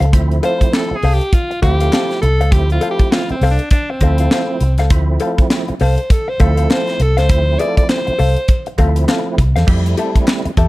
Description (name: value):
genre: funk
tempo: 100 BPM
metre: 4/4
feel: swing 60% on 16ths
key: D minor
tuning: A4 = 440 Hz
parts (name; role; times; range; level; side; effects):
- hollow-body jazz guitar; accompaniment; 0.0-10.7 s; G4 to F5; -22 LUFS; left 5 dB; none
- percussive tonewheel organ; stabs; 0.0-10.5 s; E3 to E4; -23 LUFS; right 3 dB; overdrive, chorus vibrato, fast rotary speaker
- vintage muted fingered electric bass; bass; 0.0-10.7 s; C2 to F2; -14 LUFS; equal; none
- crisp fusion drum kit; drums; 0.0-10.7 s; crash cymbal, hi-hat, kick drum, snare drum; -16 LUFS; equal; none
- edgy alto saxophone; melody; 0.5-8.7 s; C4 to D5; -20 LUFS; equal; none
- group handclap; percussion; 0.7-10.4 s; none; -30 LUFS; left 1 dB; none
room: light reverb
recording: dark, warm production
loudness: -12 LUFS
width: side -18 dB against mid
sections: 0.1-9.7 A section; 9.7-10.7 B section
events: alto saxophone solo 0.1-9.7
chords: 0.1 Dm7; 9.7 Fmaj9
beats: | 0.13 0.73 1.33 1.92 | 2.52 3.12 3.71 4.31 | 4.91 5.50 6.10 6.70 | 7.29 7.89 8.49 9.08 | 9.68 10.28